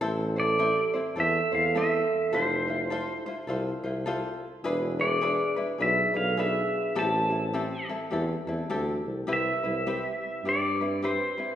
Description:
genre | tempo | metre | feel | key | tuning
Hawaiian | 104 BPM | 4/4 | swing 61% on 8ths | A minor | A4 = 440 Hz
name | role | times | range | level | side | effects
tenor ukulele | accompaniment | 0.0-11.6 s | C4 to C5 | -32 LUFS | left 1 dB | none
breathy tuba | bass | 0.0-11.2 s | E1 to G2 | -31 LUFS | equal | none
pedal steel guitar | melody | 0.4-11.6 s | C5 to A5 | -27 LUFS | equal | none
vibraphone with soft mallets | second line | 0.4-7.8 s | E4 to C5 | -31 LUFS | right 2 dB | none
room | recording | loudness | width
wet recital hall reverb, RT60 1.8 s | recorded in a church or concert hall | -25 LUFS | side -10 dB against mid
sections
0.0-9.3 A section; 9.3-11.6 B section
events
none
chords
0.0 Am; 2.3 Fmaj7; 4.6 E7; 7.0 Am7; 9.3 Cmaj7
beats
| 0.01 0.59 1.17 1.75 | 2.33 2.90 3.48 4.06 | 4.64 5.22 5.80 6.38 | 6.96 7.54 8.12 8.70 | 9.28 9.86 10.44 11.02

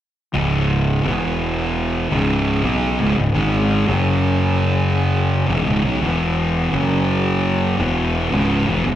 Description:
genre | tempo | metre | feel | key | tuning
metal | 84 BPM | 4/4 | straight | C# minor | A4 = 440 Hz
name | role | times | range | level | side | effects
mellow tonewheel organ | sustained chords | 0.3-9.0 s | C#3 to G#4 | -28 LUFS | left 2 dB | slow rotary speaker
thick fuzz guitar | riff | 0.3-9.0 s | C#2 to B3 | -23 LUFS | left 8 dB | distortion
thick fuzz guitar | riff | 0.3-9.0 s | C#2 to B3 | -19 LUFS | right 4 dB | distortion
fuzz fingered electric bass | bass | 0.3-9.0 s | C#1 to B1 | -22 LUFS | equal | overdrive
room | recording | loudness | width
light reverb | live gig heard through the venue's PA, club reverb | -16 LUFS | side -11 dB against mid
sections
0.3-9.0 A section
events
none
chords
0.3 C#5; 1.1 E5; 2.1 C#5; 3.9 F#5; 5.5 C#m; 6.0 E5; 6.7 F#5; 7.8 E5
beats
| 0.34 1.05 1.76 2.47 | 3.18 3.89 4.60 5.31 | 6.02 6.73 7.44 8.15 | 8.86

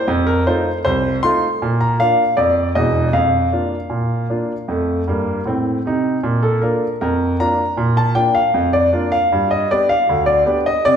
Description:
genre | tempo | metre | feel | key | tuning
ragtime piano | 78 BPM | 2/4 | straight | Bb major | A4 = 440 Hz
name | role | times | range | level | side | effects
clear baby grand piano | solo | 0.0-11.0 s | E1 to C6 | -15 LUFS | equal | none
room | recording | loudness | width
wet recital hall reverb, RT60 1.5 s | recorded in a church or concert hall | -15 LUFS | side -8 dB against mid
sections
0.0-11.0 A section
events
none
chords
0.1 F7; 1.6 Bb; 3.1 Bb/F; 4.7 F; 6.2 Bb; 9.3 G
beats
| 0.07 0.84 | 1.60 2.37 | 3.14 3.92 | 4.69 5.46 | 6.23 7.00 | 7.77 8.54 | 9.31 10.08 | 10.84

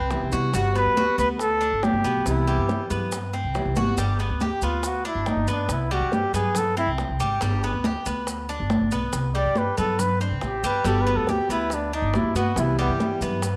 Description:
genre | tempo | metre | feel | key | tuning
latin, Cuban son and guajira | 140 BPM | 4/4 | straight | G major | A4 = 440 Hz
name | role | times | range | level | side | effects
breathy trumpet | melody | 0.0-12.9 s | B3 to D5 | -27 LUFS | equal | none
Cuban tres | arpeggios | 0.0-13.6 s | G3 to G4 | -31 LUFS | equal | none
upright bass | bass | 0.0-13.6 s | G1 to C3 | -29 LUFS | equal | none
fingerpicked steel-string acoustic guitar | accompaniment | 0.1-4.0, 10.8-13.5 s | C3 to F#4 | -31 LUFS | equal | none
bongos | percussion | 0.1-13.6 s | none | -38 LUFS | equal | none
congas | percussion | 0.1-13.6 s | none | -32 LUFS | equal | none
maracas | percussion | 0.1-13.6 s | none | -40 LUFS | equal | none
room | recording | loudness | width
moderate echo chamber reverb, RT60 1.4 s, small room ambience | none | -24 LUFS | mono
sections
0.0-4.0 A section; 4.0-13.6 B section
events
drum fill 3.8; trumpet solo 4.0-13.6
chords
0.0 Cmaj7; 0.5 Gmaj9; 2.3 Cmaj7; 4.0 G; 5.7 C5; 7.4 G; 9.1 C5; 10.9 Gmaj7; 12.6 Cmaj7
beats
0.11 | 0.54 0.97 1.40 1.83 | 2.26 2.69 3.12 3.55 | 3.98 4.41 4.84 5.27 | 5.70 6.13 6.55 6.99 | 7.42 7.84 8.27 8.70 | 9.13 9.56 9.99 10.42 | 10.85 11.28 11.71 12.14 | 12.57 13.00 13.43

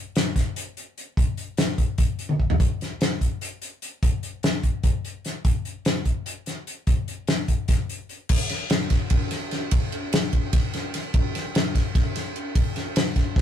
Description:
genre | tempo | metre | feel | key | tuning
rock | 295 BPM (eighths) | 7/8 | straight | none | none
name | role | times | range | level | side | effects
loose indie drum kit | drums | 0.2-13.4 s | crash cymbal, hi-hat, kick drum, ride cymbal, snare drum, toms | -22 LUFS | equal | none
room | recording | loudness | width
light reverb | rough rehearsal-room recording, tube saturation | -22 LUFS | side -10 dB against mid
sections
0.0-8.3 A section; 8.3-13.4 B section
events
drum fill 2.3-2.6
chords
none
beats
0.15 0.36 0.56 0.76 0.97 | 1.17 1.37 1.58 1.78 1.99 2.19 2.39 | 2.60 2.80 3.00 3.21 3.41 3.62 3.82 | 4.03 4.23 4.43 4.64 4.84 5.04 5.25 | 5.45 5.66 5.86 6.07 6.27 6.47 6.68 | 6.88 7.08 7.29 7.49 7.70 7.90 8.10 | 8.31 8.51 8.71 8.91 9.12 9.32 9.52 | 9.72 9.93 10.13 10.33 10.53 10.73 10.94 | 11.14 11.34 11.54 11.75 11.95 12.15 12.35 | 12.55 12.76 12.96 13.16 13.36

